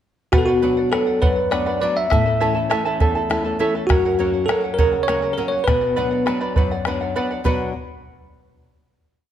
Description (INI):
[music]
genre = andean folk, Andean ensemble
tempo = 68 BPM (dotted quarters)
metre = 6/8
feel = straight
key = B minor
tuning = A4 = 440 Hz
[part]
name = bell-like tine electric piano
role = melody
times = 0.3-6.3 s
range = F#4 to E5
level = -20 LUFS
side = equal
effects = fast stereo tremolo
[part]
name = charango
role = accompaniment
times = 0.3-7.7 s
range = E4 to A5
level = -24 LUFS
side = right 4 dB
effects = none
[part]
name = flamenco guitar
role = accompaniment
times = 0.3-7.7 s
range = E2 to F#5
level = -24 LUFS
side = left 4 dB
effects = none
[part]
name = bombo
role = percussion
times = 0.3-7.7 s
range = none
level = -22 LUFS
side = equal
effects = none
[sound]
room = moderate scoring stage reverb, RT60 1.7 s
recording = none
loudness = -17 LUFS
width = side -10 dB against mid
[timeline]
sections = 0.3-7.5 A section; 7.5-9.2 final chord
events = none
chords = 0.3 Bm; 2.1 A; 3.9 F#; 5.7 Bm